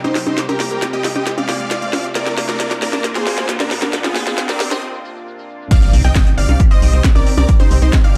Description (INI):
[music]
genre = uplifting trance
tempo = 135 BPM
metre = 4/4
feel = straight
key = C minor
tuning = A4 = 440 Hz
[part]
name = big supersaw lead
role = melody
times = 0.0-8.2 s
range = D4 to G5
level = -25 LUFS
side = equal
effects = sidechain pumping, delay
[part]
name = lush unison pad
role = sustained chords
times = 0.0-8.2 s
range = C3 to G4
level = -30 LUFS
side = equal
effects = chorus, sidechain pumping
[part]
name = liquid acid bass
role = arpeggios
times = 0.0-8.2 s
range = Bb3 to G4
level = -33 LUFS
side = equal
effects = none
[part]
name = techno drum kit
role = drums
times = 0.0-8.2 s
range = crash cymbal, hi-hat, percussion blips, snare drum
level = -23 LUFS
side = equal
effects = none
[part]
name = riser and impact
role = sound effects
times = 0.2-7.5 s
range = none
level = -28 LUFS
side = equal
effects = none
[part]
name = analog pluck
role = second line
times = 5.7-8.2 s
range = C5 to G5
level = -31 LUFS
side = equal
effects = chorus, sidechain pumping
[part]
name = electronic kick drum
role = drums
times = 5.7-8.0 s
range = none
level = -14 LUFS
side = equal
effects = none
[part]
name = tight sequencer bass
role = bass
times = 5.9-8.2 s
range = G1 to C2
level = -16 LUFS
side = equal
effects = sidechain pumping
[sound]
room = light reverb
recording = dark, warm production, high-pass filter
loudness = -16 LUFS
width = mono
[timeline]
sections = 0.0-5.7 A section; 5.7-8.2 B section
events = build-up 0.0-5.7; drum fill 0.0-4.8; riser 0.2-4.8; break 4.8-5.7; drop 5.7-8.2; impact 5.7-7.5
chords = 0.0 Eb/C; 2.2 Bb/C; 5.7 Cm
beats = | 0.38 0.82 1.26 1.71 | 2.15 2.60 3.04 3.49 | 3.93 4.38 4.82 5.26 | 5.71 6.15 6.60 7.04 | 7.49 7.93